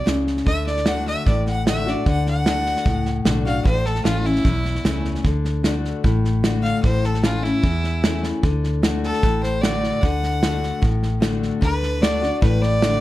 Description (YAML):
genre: honky-tonk and classic country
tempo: 151 BPM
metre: 4/4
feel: straight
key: D major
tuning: A4 = 440 Hz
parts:
  - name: clear fiddle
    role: melody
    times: 0.0-13.0 s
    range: E4 to F#5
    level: -25 LUFS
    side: equal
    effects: none
  - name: picked steel-string acoustic guitar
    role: accompaniment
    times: 0.0-13.0 s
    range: E2 to F#4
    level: -23 LUFS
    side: left 3 dB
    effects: none
  - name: vintage muted fingered electric bass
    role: bass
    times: 0.1-13.0 s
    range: A1 to E2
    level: -24 LUFS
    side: equal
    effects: none
  - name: natural country drum kit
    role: drums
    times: 0.1-12.9 s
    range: hi-hat, kick drum, snare drum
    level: -22 LUFS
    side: right 1 dB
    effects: none
room: light reverb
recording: dark, warm production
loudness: -18 LUFS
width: side -15 dB against mid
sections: 0.0-13.0 A section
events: fiddle solo 0.0-13.0; drum fill 8.2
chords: 0.5 D; 3.7 A; 5.3 D; 6.8 A; 8.4 D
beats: 0.07 | 0.47 0.87 1.27 1.67 | 2.06 2.46 2.86 3.26 | 3.66 4.06 4.46 4.85 | 5.25 5.65 6.05 6.45 | 6.84 7.24 7.64 8.04 | 8.44 8.84 9.24 9.63 | 10.03 10.43 10.83 11.23 | 11.63 12.03 12.43 12.82